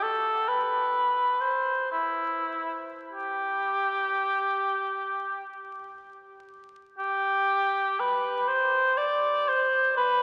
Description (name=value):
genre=classical, free, expressive piece for unaccompanied cor anglais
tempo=34-68 BPM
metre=3/4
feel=rubato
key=unclear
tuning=A4 = 440 Hz
part: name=warm cor anglais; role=solo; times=0.0-10.2 s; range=E4 to D5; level=-27 LUFS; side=equal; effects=none
room=wet cathedral reverb, RT60 5.4 s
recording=very old 78 rpm record, vinyl crackle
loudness=-27 LUFS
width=mono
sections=0.0-7.0 A section; 7.0-10.2 B section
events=none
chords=none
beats=| 0.04 0.94 1.94 | 3.13 4.38 5.59 | 7.00 8.01 8.96 | 9.96